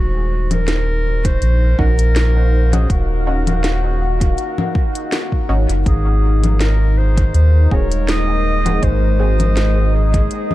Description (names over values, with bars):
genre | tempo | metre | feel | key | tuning
ambient dub | 81 BPM | 4/4 | swing 54% on 16ths | Eb dorian | A4 = 440 Hz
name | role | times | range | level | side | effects
warm clarinet | melody | 0.0-10.5 s | Gb4 to Eb5 | -24 LUFS | right 1 dB | dub echo
deep dark ambient pad | sustained chords | 0.0-10.5 s | Ab3 to Gb5 | -24 LUFS | left 2 dB | chorus, built-in reverb
warm sub bass | bass | 0.0-10.3 s | Eb1 to Eb2 | -15 LUFS | equal | none
organic electronic drum kit | drums | 0.5-10.5 s | congas, hi-hat, snare drum | -23 LUFS | left 1 dB | dub echo
electronic kick drum | drums | 1.2-10.3 s | none | -18 LUFS | equal | none
filtered dub chord stab | stabs | 1.8-9.4 s | C4 to Ab4 | -29 LUFS | right 1 dB | chorus, dub echo
room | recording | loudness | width
digital ambience | dark, warm production | -13 LUFS | side -16 dB against mid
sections
0.0-10.5 A section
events
none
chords
0.0 Ebm7; 5.9 Ab7